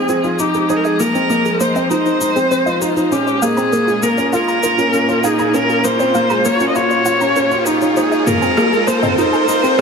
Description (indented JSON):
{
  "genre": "piano and strings electronica",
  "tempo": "99 BPM",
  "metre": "4/4",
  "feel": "straight",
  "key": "unclear",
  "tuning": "A4 = 440 Hz",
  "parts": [
    { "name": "rich viola", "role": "melody", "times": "0.0-9.8 s", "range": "F4 to Eb5", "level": "-17 LUFS", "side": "left 1 dB", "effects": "shimmer reverb, ping-pong delay" },
    { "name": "clear symphonic string section", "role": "sustained chords", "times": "0.0-9.8 s", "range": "Bb2 to Eb5", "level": "-23 LUFS", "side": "left 2 dB", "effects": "shimmer reverb" },
    { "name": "felt-muted upright piano", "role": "riff", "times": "0.0-9.8 s", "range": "Ab3 to F4", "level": "-18 LUFS", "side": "right 1 dB", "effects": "shimmer reverb, ping-pong delay" },
    { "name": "riser", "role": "sound effects", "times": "3.6-9.8 s", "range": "none", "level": "-25 LUFS", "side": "right 1 dB", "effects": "none" },
    { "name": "soft round pluck", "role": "arpeggios", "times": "0.1-9.8 s", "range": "Eb4 to Bb5", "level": "-24 LUFS", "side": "right 2 dB", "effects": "none" },
    { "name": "deep house drum kit", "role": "drums", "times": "0.1-9.8 s", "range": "rim click, shaker, toms", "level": "-25 LUFS", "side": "left 1 dB", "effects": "overdrive" }
  ],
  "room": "moderate huge ambient reverb, RT60 5.9 s",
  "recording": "high-pass filter",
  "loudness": "-13 LUFS",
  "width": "side -5 dB against mid",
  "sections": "0.0-9.8 A section",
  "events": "build-up 0.0-9.8; riser 3.6-9.8",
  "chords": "0.0 Fm7; 3.1 Bbm; 8.0 Ab6",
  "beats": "0.09 | 0.69 1.30 1.91 2.51 | 3.12 3.73 4.33 4.94 | 5.54 6.15 6.75 7.36 | 7.97 8.57 9.18 9.79"
}